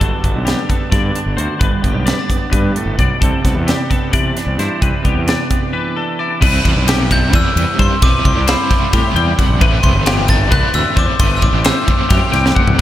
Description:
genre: math rock and midwest emo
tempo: 263 BPM (eighths)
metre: 7/8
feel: straight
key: unclear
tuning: A4 = 445 Hz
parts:
  - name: twelve-string electric guitar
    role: accompaniment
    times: 0.0-8.0 s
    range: G2 to F#4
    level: -23 LUFS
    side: right 4 dB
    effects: spring reverb
  - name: twangy electric guitar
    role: arpeggios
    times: 0.0-12.8 s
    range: G4 to G5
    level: -21 LUFS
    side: left 5 dB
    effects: analog chorus
  - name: fuzz fingered electric bass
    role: bass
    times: 0.0-12.8 s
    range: G1 to C3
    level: -18 LUFS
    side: equal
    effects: overdrive
  - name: crisp fusion drum kit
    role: drums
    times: 0.0-12.8 s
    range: crash cymbal, hi-hat, kick drum, ride cymbal, snare drum, toms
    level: -16 LUFS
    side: equal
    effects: none
  - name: overdriven electric guitar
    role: riff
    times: 6.4-12.8 s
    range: A2 to E4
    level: -20 LUFS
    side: right 1 dB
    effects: tremolo
  - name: glockenspiel with brass mallets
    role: melody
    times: 7.1-12.5 s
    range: B5 to A6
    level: -19 LUFS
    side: left 1 dB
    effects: tape echo
room: moderate cathedral reverb, RT60 4.9 s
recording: dreamy mix soaked in reverb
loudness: -12 LUFS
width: side -13 dB against mid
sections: 0.0-6.4 A section; 6.4-12.8 B section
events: break 5.7-6.4; drum fill 12.4-12.8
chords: 0.0 Gmaj9; 3.2 Cmaj9; 6.4 Cmaj7; 9.6 Am9

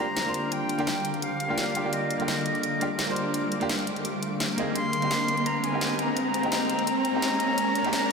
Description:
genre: liquid drum and bass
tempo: 170 BPM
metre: 4/4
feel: straight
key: Eb major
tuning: A4 = 439 Hz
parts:
  - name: breathy bright concert flute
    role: melody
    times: 0.0-8.1 s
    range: Eb5 to C6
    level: -29 LUFS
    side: equal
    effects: analog delay
  - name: clear grand piano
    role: accompaniment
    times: 0.0-7.9 s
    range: D3 to C5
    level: -30 LUFS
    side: right 1 dB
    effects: diffuse ambient delay
  - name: shimmering ambient pad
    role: sustained chords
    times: 0.0-8.1 s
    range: D3 to D6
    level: -30 LUFS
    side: left 2 dB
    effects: chorus, built-in reverb
  - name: riser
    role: sound effects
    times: 2.6-8.1 s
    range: none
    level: -33 LUFS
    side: equal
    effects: none
  - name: pop drum kit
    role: drums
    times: 0.2-8.0 s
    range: hi-hat, snare drum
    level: -32 LUFS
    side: equal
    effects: high-pass filter on hats, studio reverb, high-pass filter on snare
room: wet cathedral reverb, RT60 4.6 s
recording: dreamy mix soaked in reverb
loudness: -24 LUFS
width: side -4 dB against mid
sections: 0.0-8.1 A section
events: build-up 0.0-8.1; riser 2.6-8.1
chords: 0.0 Ebmaj9; 4.8 Abmaj9

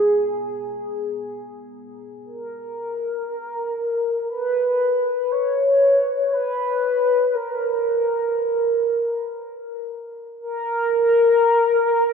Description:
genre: ambient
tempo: free time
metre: none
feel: none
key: G# minor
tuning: A4 = 440 Hz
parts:
  - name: mellow horn-like synth lead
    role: melody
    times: 0.0-12.1 s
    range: G#4 to C#5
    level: -19 LUFS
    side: left 1 dB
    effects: lush chorus, ping-pong delay
  - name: dark analog pad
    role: sustained chords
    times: 0.0-2.3 s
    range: G#3 to A#5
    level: -45 LUFS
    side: left 4 dB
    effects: chorus, phaser
room: wet cathedral reverb, RT60 5.4 s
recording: none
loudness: -18 LUFS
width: side -6 dB against mid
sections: 0.0-2.3 A section; 2.3-12.1 B section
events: none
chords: 0.0 G#madd9; 2.3 N.C.

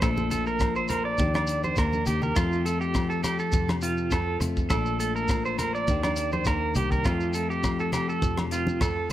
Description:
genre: highlife guitar band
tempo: 102 BPM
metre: 4/4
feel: swing 54% on 16ths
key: F mixolydian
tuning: A4 = 435 Hz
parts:
  - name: clean electric guitar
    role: accompaniment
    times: 0.0-9.1 s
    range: F2 to C5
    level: -30 LUFS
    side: left 6 dB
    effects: none
  - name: electric guitar at the edge of break-up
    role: arpeggios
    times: 0.0-9.1 s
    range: F4 to D5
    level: -28 LUFS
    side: right 4 dB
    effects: tremolo, tape echo
  - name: fingered electric bass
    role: bass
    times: 0.0-9.1 s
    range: Bb1 to F2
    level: -31 LUFS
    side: equal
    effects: none
  - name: tight funk drum kit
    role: drums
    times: 0.0-9.1 s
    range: hi-hat, kick drum, rim click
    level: -29 LUFS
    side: equal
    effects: none
  - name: agogo bells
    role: percussion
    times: 0.0-9.0 s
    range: none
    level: -40 LUFS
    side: left 3 dB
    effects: none
  - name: shekere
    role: percussion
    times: 0.0-9.1 s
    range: none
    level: -35 LUFS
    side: left 1 dB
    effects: none
  - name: congas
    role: percussion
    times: 0.2-9.1 s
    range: none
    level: -33 LUFS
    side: right 1 dB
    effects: none
room: light reverb, studio reverb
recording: none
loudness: -23 LUFS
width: side -13 dB against mid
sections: 0.0-9.1 A section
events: drum fill 1.9-2.4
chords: 0.0 Bbmaj7; 1.2 Ebmaj7; 2.4 F; 4.7 Bbmaj7; 5.9 Ebmaj7; 7.1 F

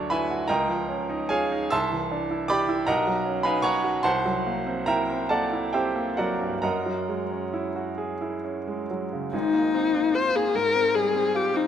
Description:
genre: classical, impressionist duo for viola and grand piano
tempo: 44-54 BPM (dotted quarters)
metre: 6/8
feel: rubato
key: unclear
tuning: A4 = 441 Hz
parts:
  - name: clear baby grand piano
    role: accompaniment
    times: 0.0-11.7 s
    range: Ab1 to E6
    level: -24 LUFS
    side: right 2 dB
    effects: none
  - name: warm viola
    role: melody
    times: 9.3-11.7 s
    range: Eb4 to C5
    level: -21 LUFS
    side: left 5 dB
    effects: none
room: moderate concert hall reverb, RT60 2.2 s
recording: close, detailed microphones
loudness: -23 LUFS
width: side -9 dB against mid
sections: 0.0-9.3 A section; 9.3-11.7 B section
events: none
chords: 0.5 Dbadd9; 1.7 Cadd9; 2.9 Badd9; 4.1 C7#11; 6.6 Gb9; 9.3 Ab69; 10.5 Fmadd9/Ab

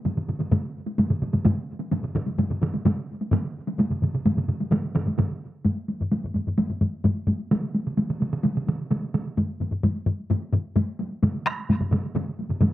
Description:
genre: japanese traditional, taiko drum ensemble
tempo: 129 BPM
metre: 4/4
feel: straight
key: none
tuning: none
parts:
  - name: solo taiko drums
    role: percussion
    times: 0.1-12.7 s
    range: none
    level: -27 LUFS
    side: right 3 dB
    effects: none
  - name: taiko ensemble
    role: percussion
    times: 0.1-12.7 s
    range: none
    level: -26 LUFS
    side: equal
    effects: none
  - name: taiko ensemble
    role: percussion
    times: 0.1-12.7 s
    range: none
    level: -26 LUFS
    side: left 1 dB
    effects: none
room: light reverb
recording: recorded outdoors, with no room sound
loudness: -23 LUFS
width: side -14 dB against mid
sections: 0.0-5.6 A section; 5.6-12.7 B section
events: none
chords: none

